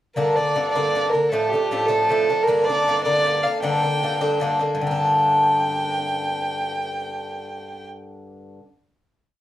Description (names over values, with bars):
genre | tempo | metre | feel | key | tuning
celtic folk, Celtic jig | 103 BPM (dotted quarters) | 6/8 | straight | G minor | A4 = 440 Hz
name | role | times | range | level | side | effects
dark fiddle | melody | 0.2-7.9 s | G4 to G5 | -22 LUFS | right 2 dB | none
Irish bouzouki | accompaniment | 0.2-8.7 s | G2 to D4 | -22 LUFS | left 1 dB | none
room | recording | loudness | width
wet studio reverb, RT60 0.5 s | heard from further back in the room | -18 LUFS | side -13 dB against mid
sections
0.2-4.8 A section; 4.8-7.1 final chord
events
none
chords
0.2 Gm; 1.3 Dm; 2.5 Gm